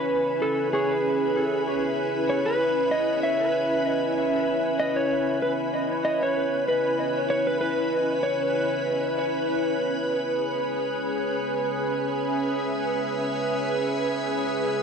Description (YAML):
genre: ambient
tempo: 96 BPM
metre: 4/4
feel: swing 54% on 16ths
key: C# minor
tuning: A4 = 439 Hz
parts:
  - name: electric slide guitar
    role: melody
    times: 0.0-9.1 s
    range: G#4 to E5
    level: -26 LUFS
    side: equal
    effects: dub echo
  - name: soft additive organ-like pad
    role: sustained chords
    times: 0.0-14.8 s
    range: C#4 to G#5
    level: -25 LUFS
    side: equal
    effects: ensemble chorus, built-in reverb, vintage 12-bit sampler grit
room: moderate plate reverb, RT60 3.5 s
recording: echo-heavy mix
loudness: -23 LUFS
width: side -6 dB against mid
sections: 0.0-9.5 A section; 9.5-14.8 B section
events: none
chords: 0.0 C#m7